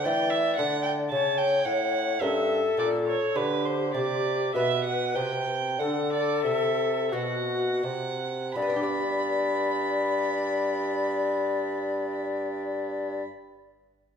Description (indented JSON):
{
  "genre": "classical, baroque-style sonata movement with continuo",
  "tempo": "41-57 BPM",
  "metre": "4/4",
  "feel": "straight",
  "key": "G major",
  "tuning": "A4 = 439 Hz",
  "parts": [
    { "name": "mellow tenor recorder", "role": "melody", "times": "0.0-13.2 s", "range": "F#4 to D5", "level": "-29 LUFS", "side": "left 6 dB", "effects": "none" },
    { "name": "dark violin", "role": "second line", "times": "0.0-13.2 s", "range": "B4 to B5", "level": "-30 LUFS", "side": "right 5 dB", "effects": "none" },
    { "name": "mellow bassoon", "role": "bass", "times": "0.0-13.2 s", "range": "G2 to E3", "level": "-30 LUFS", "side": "right 1 dB", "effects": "none" },
    { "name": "lute", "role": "accompaniment", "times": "0.1-13.5 s", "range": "G2 to D5", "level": "-35 LUFS", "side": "equal", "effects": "none" }
  ],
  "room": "wet recital hall reverb, RT60 1.5 s",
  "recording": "minimal, uncompressed stereo recording, faint mains hum",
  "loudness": "-24 LUFS",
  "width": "side -7 dB against mid",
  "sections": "0.0-8.6 A section; 8.6-14.2 B section",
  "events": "slowing down 0.0-8.6",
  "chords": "0.0 A5; 1.1 A13b9; 3.4 G; 5.8 D7; 8.6 G",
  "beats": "0.06 1.12 2.22 | 3.36 4.55 5.80 7.13 | 8.56 9.99 11.41 12.85"
}